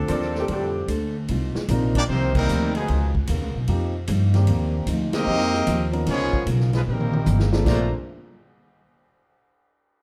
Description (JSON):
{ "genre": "jazz, big band swing", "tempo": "150 BPM", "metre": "4/4", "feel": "swing 66% on 8ths", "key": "Bb major", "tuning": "A4 = 441 Hz", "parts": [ { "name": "clear saxophone section", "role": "melody", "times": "0.0-0.9 s", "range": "Eb3 to A4", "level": "-30 LUFS", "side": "equal", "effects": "none" }, { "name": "upright bass", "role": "bass", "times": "0.0-7.9 s", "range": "G1 to G2", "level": "-25 LUFS", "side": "equal", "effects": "none" }, { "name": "picked plugged-in steel-string acoustic guitar", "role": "accompaniment", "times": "0.1-7.9 s", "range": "C3 to C5", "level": "-33 LUFS", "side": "equal", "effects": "none" }, { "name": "warm concert grand piano", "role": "accompaniment", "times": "0.1-7.9 s", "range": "Eb3 to Bb4", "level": "-32 LUFS", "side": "equal", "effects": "none" }, { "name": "warm trumpet section", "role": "stabs", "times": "0.1-0.7 s", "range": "A4 to D5", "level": "-34 LUFS", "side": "equal", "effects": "none" }, { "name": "swinging big-band drum kit", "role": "drums", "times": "0.1-7.8 s", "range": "crash cymbal, hi-hat, kick drum, ride cymbal, snare drum, toms", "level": "-31 LUFS", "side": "equal", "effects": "none" }, { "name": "brilliant trombone section", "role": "second line", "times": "0.5-7.9 s", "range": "A2 to Eb4", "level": "-30 LUFS", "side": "equal", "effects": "none" }, { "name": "bright trumpet section", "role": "melody", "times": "2.0-7.9 s", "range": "G3 to Bb5", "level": "-29 LUFS", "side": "equal", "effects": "none" } ], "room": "moderate large studio reverb, RT60 0.9 s", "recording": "dark, warm production", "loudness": "-22 LUFS", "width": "mono", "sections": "0.0-1.3 A section; 1.3-7.7 B section; 7.7-9.3 C section", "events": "band accent 2.3, 5.1; drum fill 6.9-7.7", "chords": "0.0 Bbmaj9; 1.3 Cm11; 2.1 F9sus4; 2.9 Db13; 3.7 F9sus4; 4.5 Cm11; 5.3 F9sus4; 6.1 Db13; 6.9 F9sus4; 7.7 Bbmaj9", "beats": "0.09 0.48 0.88 | 1.28 1.68 2.08 2.48 | 2.88 3.28 3.68 4.08 | 4.47 4.87 5.27 5.67 | 6.07 6.47 6.87 7.26 | 7.66" }